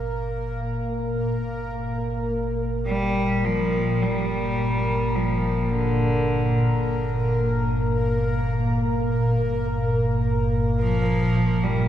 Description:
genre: dark ambient drone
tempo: free time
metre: none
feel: none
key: unclear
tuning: A4 = 440 Hz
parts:
  - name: deep rumbling drone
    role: drone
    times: 0.0-11.9 s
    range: G1 to Bb2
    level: -24 LUFS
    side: equal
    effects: built-in reverb, phaser
  - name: bubbling stepped-filter texture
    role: texture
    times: 0.0-11.9 s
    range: Bb3 to Bb4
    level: -27 LUFS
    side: equal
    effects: chorus, built-in reverb, shimmer reverb
  - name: rich cello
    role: melody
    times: 2.9-11.9 s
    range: D3 to G3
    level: -26 LUFS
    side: right 1 dB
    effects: shimmer reverb, tape echo
room: wet cathedral reverb, RT60 5.4 s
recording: none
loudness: -21 LUFS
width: side -11 dB against mid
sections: 0.0-11.9 A section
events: none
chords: 0.0 Gm

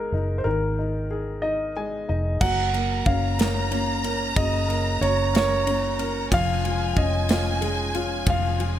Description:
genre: six-eight pop ballad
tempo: 61 BPM (dotted quarters)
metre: 6/8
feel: straight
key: unclear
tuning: A4 = 440 Hz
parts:
  - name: warm concert grand piano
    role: melody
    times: 0.0-8.8 s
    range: Bb4 to Gb5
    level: -27 LUFS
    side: right 1 dB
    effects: none
  - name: clear upright piano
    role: accompaniment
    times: 0.0-8.8 s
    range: Db3 to Ab5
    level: -30 LUFS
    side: left 5 dB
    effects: none
  - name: vintage muted fingered electric bass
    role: bass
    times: 0.0-8.8 s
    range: F1 to Ab1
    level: -26 LUFS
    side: equal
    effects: none
  - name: warm studio violin section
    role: second line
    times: 2.4-8.8 s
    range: Ab5 to Bb5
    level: -30 LUFS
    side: equal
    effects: none
  - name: fingerpicked steel-string acoustic guitar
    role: arpeggios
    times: 2.4-8.8 s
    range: F3 to Gb4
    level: -32 LUFS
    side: right 6 dB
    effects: none
  - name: modern studio drum kit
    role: drums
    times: 2.4-8.7 s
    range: crash cymbal, kick drum, ride cymbal, snare drum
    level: -28 LUFS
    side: equal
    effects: none
room: light reverb, studio reverb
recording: none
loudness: -21 LUFS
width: side -11 dB against mid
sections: 0.0-2.4 A section; 2.4-8.8 B section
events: upright piano fill 1.4-2.4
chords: 0.0 Absus2; 2.4 Gb; 6.3 Db/F

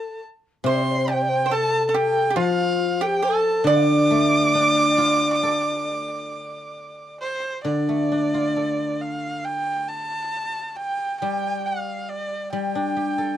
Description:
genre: chinese traditional, Chinese chamber ensemble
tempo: 69 BPM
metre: 4/4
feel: rubato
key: D yu mode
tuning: A4 = 445 Hz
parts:
  - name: clear erhu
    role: melody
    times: 0.0-13.4 s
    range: C5 to D6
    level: -24 LUFS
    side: right 2 dB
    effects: none
  - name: breathy mellow xiao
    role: second line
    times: 0.0-7.2 s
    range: F4 to F5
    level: -24 LUFS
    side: left 2 dB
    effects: none
  - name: pipa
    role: second line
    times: 0.0-7.2 s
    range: F4 to D5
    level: -26 LUFS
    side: right 5 dB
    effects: none
  - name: guzheng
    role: accompaniment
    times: 0.6-13.4 s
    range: C3 to A4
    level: -24 LUFS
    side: left 1 dB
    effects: none
room: moderate small room reverb, RT60 0.5 s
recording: dark, warm production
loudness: -20 LUFS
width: side -11 dB against mid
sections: 0.0-7.6 A section; 7.6-13.4 B section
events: none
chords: none

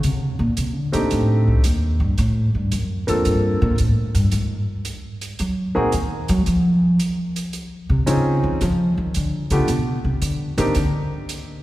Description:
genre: jazz piano trio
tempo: 112 BPM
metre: 4/4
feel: swing 68% on 8ths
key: Bb major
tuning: A4 = 440 Hz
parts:
  - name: upright bass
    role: bass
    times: 0.0-11.6 s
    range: C2 to Gb3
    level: -19 LUFS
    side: equal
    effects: none
  - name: hi-hat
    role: drums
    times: 0.0-11.5 s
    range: none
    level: -34 LUFS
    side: right 4 dB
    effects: none
  - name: warm concert grand piano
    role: melody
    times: 0.9-10.7 s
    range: A3 to A4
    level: -24 LUFS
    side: equal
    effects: none
room: wet church reverb, RT60 2.7 s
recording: recorded in a church or concert hall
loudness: -18 LUFS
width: side -16 dB against mid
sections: 0.0-2.2 A section; 2.2-11.6 A section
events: upright bass solo 0.0-11.6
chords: 0.0 Cm13; 2.2 Bbmaj9; 4.3 N.C.; 5.4 Ab7(no3) (rootless); 6.5 Dbmaj9; 8.6 Dm; 9.7 G (rootless); 10.8 N.C.

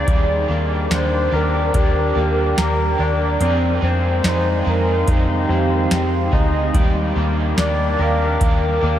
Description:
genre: dream pop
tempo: 72 BPM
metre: 4/4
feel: straight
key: Eb major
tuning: A4 = 436 Hz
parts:
  - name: warm velvety synth lead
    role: melody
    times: 0.0-8.8 s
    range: G4 to F5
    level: -24 LUFS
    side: right 2 dB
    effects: chorus, diffuse ambient delay, shimmer reverb
  - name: crunchy overdriven guitar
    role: accompaniment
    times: 0.0-9.0 s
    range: F2 to Ab4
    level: -27 LUFS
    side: right 3 dB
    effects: harmonic tremolo, wide subtle chorus, shimmer reverb
  - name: warbly tape-like pad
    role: sustained chords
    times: 0.0-9.0 s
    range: Ab3 to D6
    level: -26 LUFS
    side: equal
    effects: chorus, built-in reverb, shimmer reverb
  - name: electric guitar through a small old amp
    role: arpeggios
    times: 0.0-9.0 s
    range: G3 to Bb4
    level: -22 LUFS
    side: left 3 dB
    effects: wide subtle chorus, diffuse ambient delay, shimmer reverb
  - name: vintage muted picked electric bass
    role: bass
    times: 0.0-9.0 s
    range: D2 to F2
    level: -20 LUFS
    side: equal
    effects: none
  - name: booming analog drum machine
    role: drums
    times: 0.1-8.6 s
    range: hi-hat, kick drum, snare drum, tambourine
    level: -20 LUFS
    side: equal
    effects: none
room: wet huge ambient reverb, RT60 7.9 s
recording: dreamy mix soaked in reverb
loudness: -16 LUFS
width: side -11 dB against mid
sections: 0.0-9.0 A section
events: none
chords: 0.1 Ebmaj7; 3.4 Fm7; 6.7 Ebmaj7

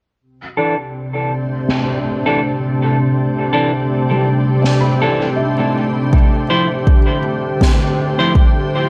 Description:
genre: ambient dub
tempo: 81 BPM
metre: 4/4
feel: swing 57% on 16ths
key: unclear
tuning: A4 = 437 Hz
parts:
  - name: soft additive organ-like pad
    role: sustained chords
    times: 0.9-8.9 s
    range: C3 to C5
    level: -19 LUFS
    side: equal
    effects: ensemble chorus, built-in reverb
  - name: clean electric guitar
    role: stabs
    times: 0.6-8.3 s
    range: E3 to C5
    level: -22 LUFS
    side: equal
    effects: low-pass filter, dub echo
  - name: snare drum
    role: drums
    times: 1.7-7.8 s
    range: none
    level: -26 LUFS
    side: equal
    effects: low-pass filter on snare, low-pass filter on room, dub echo
  - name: felt-muted upright piano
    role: arpeggios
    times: 4.1-7.2 s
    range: G3 to B5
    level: -27 LUFS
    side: equal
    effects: low-pass filter, dub echo
  - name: electronic kick drum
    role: drums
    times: 6.1-8.5 s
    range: none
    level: -14 LUFS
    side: equal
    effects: overdrive
room: moderate echo chamber reverb, RT60 2.3 s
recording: none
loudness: -16 LUFS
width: mono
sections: 0.2-8.9 A section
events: filter sweep on felt piano 0.2-8.9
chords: 0.2 C69; 6.1 Dm9

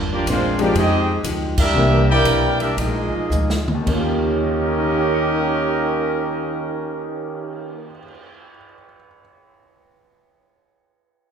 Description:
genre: jazz, big band swing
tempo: 106-125 BPM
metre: 4/4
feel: swing 66% on 8ths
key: Eb major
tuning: A4 = 440 Hz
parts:
  - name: fingerpicked old ladder-braced acoustic guitar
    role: accompaniment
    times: 0.0-8.1 s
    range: G2 to G4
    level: -29 LUFS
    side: left 2 dB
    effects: none
  - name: upright bass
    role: bass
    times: 0.0-7.9 s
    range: G1 to F2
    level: -23 LUFS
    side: equal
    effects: none
  - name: clear trumpet section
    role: melody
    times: 0.1-7.9 s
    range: Ab3 to G5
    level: -22 LUFS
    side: equal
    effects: none
  - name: warm trombone section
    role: second line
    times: 0.1-7.9 s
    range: Eb3 to G4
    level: -24 LUFS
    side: right 3 dB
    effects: none
  - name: swinging big-band drum kit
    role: drums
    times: 0.3-8.3 s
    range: crash cymbal, cymbal swell, hi-hat, kick drum, ride cymbal, snare drum, toms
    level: -26 LUFS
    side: equal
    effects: none
  - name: clear grand piano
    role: accompaniment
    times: 0.6-9.2 s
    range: Eb2 to Db7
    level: -25 LUFS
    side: left 1 dB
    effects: none
room: wet recital hall reverb, RT60 1.3 s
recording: recorded in a church or concert hall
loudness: -17 LUFS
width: side -7 dB against mid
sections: 0.0-3.9 A section; 3.9-8.4 B section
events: slowing down 0.0-3.9; band accent 1.5; drum fill 3.3-3.9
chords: 0.0 Gm7; 0.8 Fm9; 1.7 C9; 2.8 Bb7sus4; 3.9 Eb7

